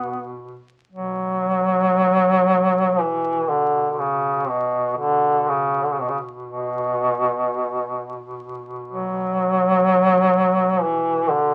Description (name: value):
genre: caucasian folk, Caucasian lament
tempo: 55-64 BPM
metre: 4/4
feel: rubato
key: B minor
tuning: A4 = 440 Hz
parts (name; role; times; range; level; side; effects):
- warm duduk; melody; 0.0-11.5 s; B2 to B3; -20 LUFS; equal; none
- warm duduk; drone; 0.0-11.5 s; B2; -36 LUFS; equal; none
room: moderate small room ambience, RT60 0.5 s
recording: very old 78 rpm record, vinyl crackle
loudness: -20 LUFS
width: mono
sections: 0.9-11.5 A section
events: none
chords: none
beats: | 0.92 1.97 2.99 3.98 | 4.97 5.96 6.95 7.93 | 8.90 9.86 10.80